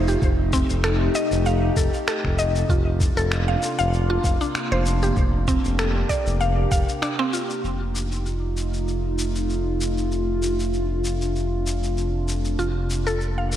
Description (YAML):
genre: organic downtempo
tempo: 97 BPM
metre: 4/4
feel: swing 54% on 16ths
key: F mixolydian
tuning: A4 = 441 Hz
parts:
  - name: warbly tape-like pad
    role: sustained chords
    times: 0.0-13.6 s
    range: C3 to G4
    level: -27 LUFS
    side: equal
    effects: chorus, built-in reverb, phaser, sidechain pumping
  - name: mallet-like synth pluck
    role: arpeggios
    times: 0.0-7.4, 12.6-13.6 s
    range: C4 to F5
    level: -26 LUFS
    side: equal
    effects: chorus, diffuse ambient delay
  - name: smooth synth bass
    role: bass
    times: 0.0-13.6 s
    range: F1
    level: -24 LUFS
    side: equal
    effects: sidechain pumping
  - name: electronic shaker and finger snaps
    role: drums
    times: 0.1-13.6 s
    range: none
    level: -31 LUFS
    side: left 1 dB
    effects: none
  - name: electronic kick drum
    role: drums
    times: 0.2-6.8 s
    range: none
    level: -23 LUFS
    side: equal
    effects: none
room: moderate lush hall reverb, RT60 1.7 s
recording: dreamy mix soaked in reverb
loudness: -20 LUFS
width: side -11 dB against mid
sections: 0.0-7.6 A section; 7.6-13.6 B section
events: break 7.0-7.6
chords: 0.0 F7; 2.7 Bbadd9/F; 7.6 F7; 12.6 Bbadd9/F